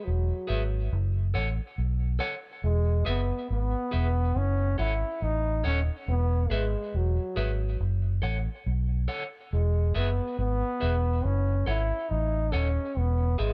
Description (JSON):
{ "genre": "roots reggae", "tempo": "70 BPM", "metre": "4/4", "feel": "swing 59% on 16ths", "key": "E major", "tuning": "A4 = 440 Hz", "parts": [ { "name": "warm trombone", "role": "melody", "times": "0.0-13.5 s", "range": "F#3 to E4", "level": "-34 LUFS", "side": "equal", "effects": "tape echo" }, { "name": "vintage muted fingered electric bass", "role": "bass", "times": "0.1-13.5 s", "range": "D#1 to B1", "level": "-28 LUFS", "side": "equal", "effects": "none" }, { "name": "clean electric guitar", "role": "accompaniment", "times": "0.5-13.5 s", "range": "G#4 to F#5", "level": "-38 LUFS", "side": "equal", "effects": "tremolo, tape echo" } ], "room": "light reverb", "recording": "dark, warm production", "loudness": "-28 LUFS", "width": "mono", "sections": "0.0-13.5 A section", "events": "none", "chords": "0.0 E; 0.9 F#m; 2.6 E; 4.4 F#m; 6.1 E; 7.8 F#m; 9.5 E; 11.2 F#m; 13.0 E", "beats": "0.05 0.91 1.77 | 2.63 3.49 4.35 5.21 | 6.07 6.93 7.79 8.65 | 9.51 10.37 11.23 12.10 | 12.96" }